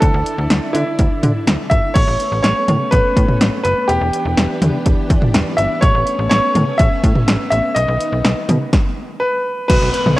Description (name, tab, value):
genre	synth-pop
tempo	124 BPM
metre	4/4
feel	straight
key	unclear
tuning	A4 = 441 Hz
part	bright baby grand piano	melody	0.0-10.2 s	E4 to E5	-18 LUFS	equal	cassette tape
part	string machine, violins	sustained chords	0.0-10.2 s	D3 to A4	-24 LUFS	equal	ensemble chorus, cassette tape
part	slap-like FM bass	bass	0.0-10.2 s	E1 to D3	-19 LUFS	equal	none
part	punchy analog drum machine	drums	0.0-10.2 s	crash cymbal, hi-hat, kick drum, snare drum, toms	-16 LUFS	equal	none
part	clean electric guitar	second line	9.7-10.2 s	F#4 to B4	-21 LUFS	left 3 dB	analog chorus, cassette tape
part	downlifter	sound effects	9.7-10.2 s	none	-23 LUFS	right 2 dB	none
room	light reverb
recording	home recording on cassette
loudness	-13 LUFS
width	side -18 dB against mid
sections	0.0-2.0 A section; 2.0-9.7 B section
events	none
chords	0.0 Dsus2; 2.0 Aadd9; 3.9 Em7; 5.8 Aadd9; 7.8 Badd9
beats	| 0.02 0.50 0.99 1.47 | 1.96 2.44 2.92 3.41 | 3.89 4.37 4.86 5.34 | 5.83 6.31 6.79 7.28 | 7.76 8.24 8.73 9.21 | 9.70 10.18